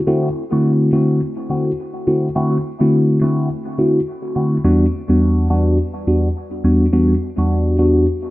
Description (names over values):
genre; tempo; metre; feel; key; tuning
afrobeats; 105 BPM; 4/4; swing 58% on 16ths; unclear; A4 = 441 Hz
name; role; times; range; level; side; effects
mellow tine electric piano; solo; 0.1-8.1 s; E2 to F#4; -14 LUFS; equal; phaser, dub echo
room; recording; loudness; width
moderate spring reverb, RT60 1.1 s; echo-heavy mix; -14 LUFS; side -17 dB against mid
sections
0.0-8.3 A section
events
none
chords
0.0 D7; 4.6 Em7